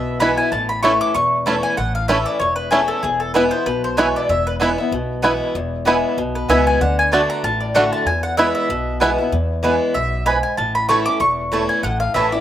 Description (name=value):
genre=bluegrass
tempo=191 BPM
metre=4/4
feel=swing 55% on 8ths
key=E mixolydian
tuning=A4 = 440 Hz
part: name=mandolin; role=melody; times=0.0-12.4 s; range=G#4 to D6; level=-19 LUFS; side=left 1 dB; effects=slapback echo
part: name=picked acoustic archtop guitar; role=accompaniment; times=0.0-12.4 s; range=E2 to F#4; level=-21 LUFS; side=left 2 dB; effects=slapback echo
part: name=upright bass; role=bass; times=0.0-12.4 s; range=E1 to E2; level=-25 LUFS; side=equal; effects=none
part: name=bluegrass banjo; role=arpeggios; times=0.2-9.1 s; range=A3 to F#4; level=-18 LUFS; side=right 2 dB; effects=slapback echo
part: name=mandolin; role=stabs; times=0.2-12.3 s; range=A3 to A5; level=-22 LUFS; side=right 4 dB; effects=none
room=little or no reverb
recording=recorded outdoors, with no room sound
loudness=-16 LUFS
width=side -11 dB against mid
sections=0.0-9.3 A section; 9.3-12.4 A section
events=none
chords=0.0 E; 0.5 A; 3.0 E; 6.8 D; 8.1 E; 10.6 A